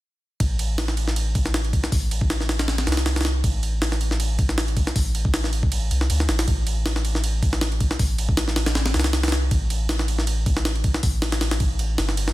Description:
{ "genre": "drum and bass, jungle", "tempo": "158 BPM", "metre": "4/4", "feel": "swing 54% on 16ths", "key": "A minor", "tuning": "A4 = 440 Hz", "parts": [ { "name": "soft dub sub bass", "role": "bass", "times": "0.4-12.3 s", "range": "G1 to D2", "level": "-23 LUFS", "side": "equal", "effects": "tube saturation" }, { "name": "jungle sampler-style drum kit", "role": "drums", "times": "0.4-12.3 s", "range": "hi-hat, kick drum, ride cymbal, snare drum", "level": "-22 LUFS", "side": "equal", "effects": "studio reverb" } ], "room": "little or no reverb", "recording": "dense, heavily limited modern master", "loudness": "-20 LUFS", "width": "side -17 dB against mid", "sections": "0.4-12.3 A section", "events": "none", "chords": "none" }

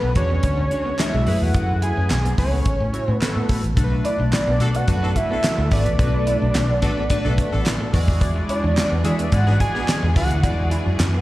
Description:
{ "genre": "early-eighties boogie funk", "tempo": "108 BPM", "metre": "4/4", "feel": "straight", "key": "B dorian", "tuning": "A4 = 439 Hz", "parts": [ { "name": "fat analog lead", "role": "melody", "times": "0.0-10.7 s", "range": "B4 to G#5", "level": "-25 LUFS", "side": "equal", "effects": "slapback echo" }, { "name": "electric guitar at the edge of break-up", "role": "riff", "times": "0.0-11.2 s", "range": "G#3 to E4", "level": "-32 LUFS", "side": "right 2 dB", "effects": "lush chorus, slapback echo" }, { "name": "vintage muted fingered electric bass", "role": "bass", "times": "0.0-11.2 s", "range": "G#1 to E3", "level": "-20 LUFS", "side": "equal", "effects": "none" }, { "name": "chorused polysynth", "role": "accompaniment", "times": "0.2-11.0 s", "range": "G#3 to E5", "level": "-28 LUFS", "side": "left 1 dB", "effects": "phaser, slapback echo" }, { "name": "damped 70s drum kit", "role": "drums", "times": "0.2-11.1 s", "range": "handclaps, hi-hat, kick drum, snare drum", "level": "-22 LUFS", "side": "equal", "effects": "none" }, { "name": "group handclap", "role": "percussion", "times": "1.0-11.1 s", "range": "none", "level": "-33 LUFS", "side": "right 3 dB", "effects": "none" }, { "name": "clear studio string section", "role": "sustained chords", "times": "3.8-11.2 s", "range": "E3 to G#4", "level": "-31 LUFS", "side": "right 1 dB", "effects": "none" }, { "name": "clear horn section", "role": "second line", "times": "4.6-10.1 s", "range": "B3 to A4", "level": "-31 LUFS", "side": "equal", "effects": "slapback echo" } ], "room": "little or no reverb", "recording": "live gig heard through the venue's PA, recital hall reverb", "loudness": "-17 LUFS", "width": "side -16 dB against mid", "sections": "0.0-3.8 A section; 3.8-11.2 B section", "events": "none", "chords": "0.2 E13; 1.3 F#m11; 2.7 A6; 3.8 Bm7; 7.9 E9" }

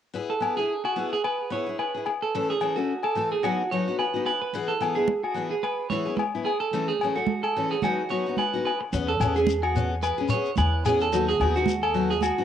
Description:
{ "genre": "highlife guitar band", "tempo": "109 BPM", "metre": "4/4", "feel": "swing 55% on 16ths", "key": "E major", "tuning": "A4 = 440 Hz", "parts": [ { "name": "picked steel-string acoustic guitar", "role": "accompaniment", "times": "0.1-12.4 s", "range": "E3 to A4", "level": "-29 LUFS", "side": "left 6 dB", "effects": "cassette tape" }, { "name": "clean electric guitar", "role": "arpeggios", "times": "0.3-12.4 s", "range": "F#4 to C#5", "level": "-26 LUFS", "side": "right 6 dB", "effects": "cassette tape, analog delay" }, { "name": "agogo bells", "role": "percussion", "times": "0.4-12.4 s", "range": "none", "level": "-30 LUFS", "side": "left 8 dB", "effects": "none" }, { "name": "congas", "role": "percussion", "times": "4.5-12.4 s", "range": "none", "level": "-30 LUFS", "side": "right 8 dB", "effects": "none" }, { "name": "upright bass", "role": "bass", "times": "8.9-12.3 s", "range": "D#2 to E2", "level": "-28 LUFS", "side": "equal", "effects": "none" }, { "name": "shekere", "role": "percussion", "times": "8.9-12.4 s", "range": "none", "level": "-30 LUFS", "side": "left 3 dB", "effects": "none" } ], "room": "moderate spring reverb, RT60 2.5 s", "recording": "home recording on cassette", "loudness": "-23 LUFS", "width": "side -9 dB against mid", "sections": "0.1-8.9 A section; 8.9-12.4 B section", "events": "none", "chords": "0.1 E; 2.3 F#m7; 3.4 B; 4.5 E; 6.7 F#m7; 7.8 B; 8.9 E6; 11.1 B/D#" }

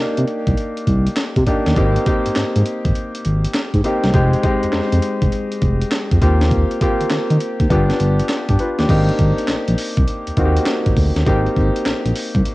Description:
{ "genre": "R&B, new jack swing", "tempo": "101 BPM", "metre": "4/4", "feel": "swing 66% on 16ths", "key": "unclear", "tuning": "A4 = 437 Hz", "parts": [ { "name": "warm grand piano", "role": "accompaniment", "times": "0.0-12.5 s", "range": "Ab3 to B4", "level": "-20 LUFS", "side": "left 1 dB", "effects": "cassette tape" }, { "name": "smooth synth bass", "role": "bass", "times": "0.0-12.4 s", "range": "F1 to Eb3", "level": "-17 LUFS", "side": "equal", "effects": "none" }, { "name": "breakbeat sampler-style drum kit", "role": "drums", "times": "0.2-12.5 s", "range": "crash cymbal, handclaps, hi-hat, kick drum, snare drum", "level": "-20 LUFS", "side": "equal", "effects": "vintage 12-bit sampler grit, cassette tape" } ], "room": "digital ambience", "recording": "home recording on cassette", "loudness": "-15 LUFS", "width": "side -19 dB against mid", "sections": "0.0-8.9 A section; 8.9-12.5 B section", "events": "none", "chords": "0.0 Cm7; 1.8 Abmaj7; 4.1 Fm7; 6.2 Eb6; 7.7 G7; 8.9 Abmaj9" }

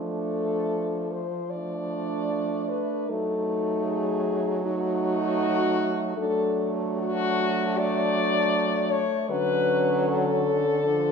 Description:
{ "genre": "classical, lyrical piece for horn quartet", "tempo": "77 BPM", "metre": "4/4", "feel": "rubato", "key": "unclear", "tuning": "A4 = 440 Hz", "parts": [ { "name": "mellow French horn", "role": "melody", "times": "0.0-11.1 s", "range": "F#4 to D5", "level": "-26 LUFS", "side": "left 6 dB", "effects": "none" }, { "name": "warm French horn", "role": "second line", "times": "0.0-11.1 s", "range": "C#4 to D#4", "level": "-30 LUFS", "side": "right 10 dB", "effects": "none" }, { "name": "warm French horn", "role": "accompaniment", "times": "0.0-11.1 s", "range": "F3 to A3", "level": "-31 LUFS", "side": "left 1 dB", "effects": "none" }, { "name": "warm French horn", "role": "bass", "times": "0.0-11.1 s", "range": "D3 to F#3", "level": "-31 LUFS", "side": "right 3 dB", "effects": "none" } ], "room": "moderate concert hall reverb, RT60 1.9 s", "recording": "minimal, uncompressed stereo recording", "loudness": "-23 LUFS", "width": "side -6 dB against mid", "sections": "0.0-11.1 A section", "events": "none", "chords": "0.0 Dm/F; 3.1 F#m69; 9.3 Dmaj7" }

